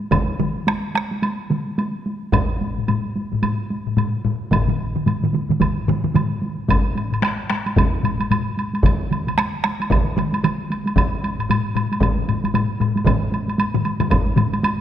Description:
japanese traditional, taiko drum ensemble; 112 BPM; 4/4; swing 60% on 16ths
solo taiko drums; percussion; 0.0-14.8 s; -24 LUFS; right 1 dB
taiko ensemble; percussion; 0.1-14.5 s; -23 LUFS; right 2 dB
taiko ensemble; percussion; 0.1-14.3 s; -21 LUFS; equal
woodblock; percussion; 0.1-14.8 s; -27 LUFS; right 3 dB
taiko ensemble; percussion; 2.3-14.5 s; -23 LUFS; left 4 dB
wet concert hall reverb, RT60 2.0 s; close, detailed microphones; -18 LUFS; side -10 dB against mid
0.0-6.7 A section; 6.7-14.8 B section
speeding up 0.0-14.8
| 0.11 0.67 1.22 1.77 | 2.33 2.88 3.42 3.97 | 4.52 5.06 5.61 6.15 | 6.69 7.23 7.77 8.30 | 8.84 9.37 9.90 10.43 | 10.96 11.49 12.02 12.54 | 13.07 13.59 14.11 14.63

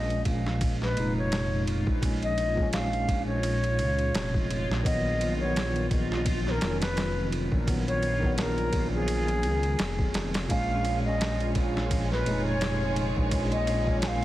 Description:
trip hop; 85 BPM; 4/4; swing 56% on 16ths; Bb phrygian; A4 = 440 Hz
bright wooden flute; melody; 0.0-14.2 s; Ab4 to Ab5; -31 LUFS; left 1 dB; tape echo
tine electric piano; accompaniment; 0.0-14.2 s; Bb2 to Eb4; -30 LUFS; equal; tremolo, vintage 12-bit sampler grit
dark detuned saw bass; bass; 0.0-14.2 s; F1 to Db2; -30 LUFS; equal
backwards swelling texture; texture; 0.6-14.2 s; F4; -39 LUFS; right 1 dB; built-in reverb
boom bap sampler-style drum kit; drums; 0.1-14.2 s; kick drum, ride cymbal, snare drum; -31 LUFS; equal; studio reverb
rich studio violin section; sustained chords; 10.5-14.2 s; Ab3 to Db5; -35 LUFS; right 2 dB; vintage 12-bit sampler grit
light reverb; heavily compressed radio sound; -25 LUFS; side -15 dB against mid
0.0-14.2 A section
0.0 Bbm7; 4.8 B; 10.5 Bbm7
0.61 1.32 | 2.02 2.73 3.44 4.14 | 4.85 5.55 6.26 6.97 | 7.67 8.38 9.08 9.79 | 10.49 11.20 11.91 12.61 | 13.32 14.02

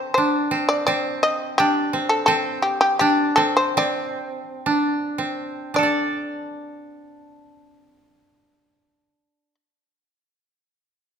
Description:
japanese traditional, Japanese chamber music; 52-87 BPM; 2/4; rubato; D in sen; A4 = 440 Hz
shamisen; melody; 0.0-9.5 s; G4 to Eb5; -20 LUFS; left 1 dB
koto; second line; 0.0-9.6 s; C4 to D5; -22 LUFS; right 1 dB
moderate recital hall reverb, RT60 1.7 s; minimal, uncompressed stereo recording; -19 LUFS; side -8 dB against mid
0.0-5.7 A section; 5.7-10.2 B section
slowing down 2.3-5.7
0.18 | 0.90 1.61 | 2.30 3.02 | 3.80 4.69 | 5.75 6.88 | 7.99 9.09

